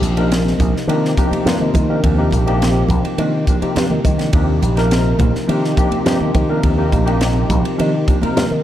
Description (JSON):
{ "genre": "electric jazz fusion", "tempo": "104 BPM", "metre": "4/4", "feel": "straight", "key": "Eb major", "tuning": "A4 = 438 Hz", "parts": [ { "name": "barky tine electric piano", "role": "accompaniment", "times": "0.0-8.6 s", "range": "C3 to Bb4", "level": "-19 LUFS", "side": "left 2 dB", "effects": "ensemble chorus" }, { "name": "mellow electric guitar", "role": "stabs", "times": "0.0-8.5 s", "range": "F3 to G4", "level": "-25 LUFS", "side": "right 2 dB", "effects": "analog chorus" }, { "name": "slap bass with an envelope filter", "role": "bass", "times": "0.0-8.6 s", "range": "Bb1 to Eb3", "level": "-17 LUFS", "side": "equal", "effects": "none" }, { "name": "crisp fusion drum kit", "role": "drums", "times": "0.0-8.5 s", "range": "hi-hat, kick drum, ride cymbal, snare drum", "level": "-20 LUFS", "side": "equal", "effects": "none" }, { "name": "congas", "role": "percussion", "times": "0.0-8.5 s", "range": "none", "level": "-24 LUFS", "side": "right 3 dB", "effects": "none" } ], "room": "little or no reverb", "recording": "dark, warm production", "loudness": "-14 LUFS", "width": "side -12 dB against mid", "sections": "0.0-8.6 A section", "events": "none", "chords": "0.0 Ebmaj9" }